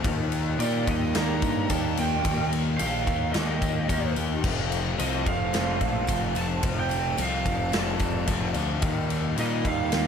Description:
rock, shoegaze and dream pop; 109 BPM; 4/4; straight; A4 = 441 Hz
icy glass pad; sustained chords; 0.0-10.1 s; F4 to A5; -39 LUFS; right 1 dB; chorus, built-in reverb
crunchy overdriven guitar; riff; 0.0-10.1 s; Eb3 to G4; -30 LUFS; left 9 dB; wide subtle chorus
twangy electric guitar; riff; 0.0-10.1 s; Eb3 to F4; -35 LUFS; right 12 dB; reverse reverb
fuzz picked electric bass; bass; 0.0-10.1 s; F1 to Bb2; -29 LUFS; equal; overdrive
big rock drum kit; drums; 0.0-10.1 s; crash cymbal, kick drum, ride cymbal, snare drum; -29 LUFS; equal
tambourine; percussion; 0.3-10.0 s; -45 LUFS; right 10 dB
lead guitar through a small cranked amp; melody; 0.6-10.1 s; D5 to Bb5; -32 LUFS; right 6 dB; overdrive, digital delay
light reverb, small room ambience; -23 LUFS; side -7 dB against mid
0.0-10.1 A section
0.0 Ebadd9; 4.4 F; 8.8 Ebadd9
| 0.04 0.59 1.14 1.69 | 2.24 2.79 3.34 3.89 | 4.44 4.99 5.54 6.08 | 6.63 7.18 7.73 8.28 | 8.82 9.37 9.92

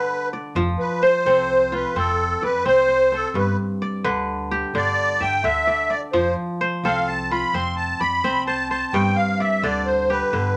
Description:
west african traditional; 86 BPM (dotted quarters); 12/8; straight; F lydian; A4 = 440 Hz
musette accordion; melody; 0.0-10.6 s; A4 to C6; -22 LUFS; equal
kora; arpeggios; 0.0-10.6 s; G2 to E5; -27 LUFS; equal
upright bass; bass; 0.6-10.6 s; F1 to G2; -32 LUFS; equal
light reverb; -21 LUFS; mono
0.6-10.6 A section
accordion solo 0.6-10.6
0.0 G; 0.6 F; 3.3 G; 6.1 F; 8.9 G
| 0.55 1.25 1.95 2.65 | 3.35 4.04 4.74 5.44 | 6.14 6.83 7.53 8.23 | 8.93 9.63 10.32

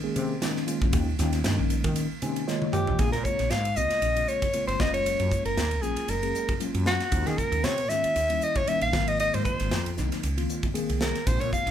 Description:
electric jazz fusion; 116 BPM; 4/4; swing 55% on 16ths; A4 = 438 Hz
mellow tine electric piano; accompaniment; 0.0-11.7 s; Db3 to Ab5; -31 LUFS; left 2 dB; medium stereo tremolo
woody fretless electric bass; bass; 0.2-11.7 s; Gb1 to Eb3; -29 LUFS; right 1 dB
modern studio drum kit; drums; 0.2-11.7 s; hi-hat, kick drum, ride cymbal, snare drum, toms; -30 LUFS; equal
warm soprano saxophone; melody; 2.7-11.7 s; Gb4 to F5; -26 LUFS; equal
moderate large studio reverb, RT60 0.8 s; band playing live in one room; -24 LUFS; side -10 dB against mid
0.0-3.0 A section; 3.0-11.7 B section
tine electric piano fill 2.0-3.0; drum fill 2.5-3.0
0.0 Eb9sus4; 3.0 Bbm9; 4.8 Gbmaj7; 7.1 Eb7sus4; 8.2 Eb7b9; 8.9 Ab13; 10.2 Dbmaj13
0.42 | 0.93 1.45 1.96 2.48 | 2.99 3.51 4.03 4.54 | 5.06 5.58 6.09 6.61 | 7.13 7.64 8.16 8.68 | 9.20 9.71 10.23 10.75 | 11.27

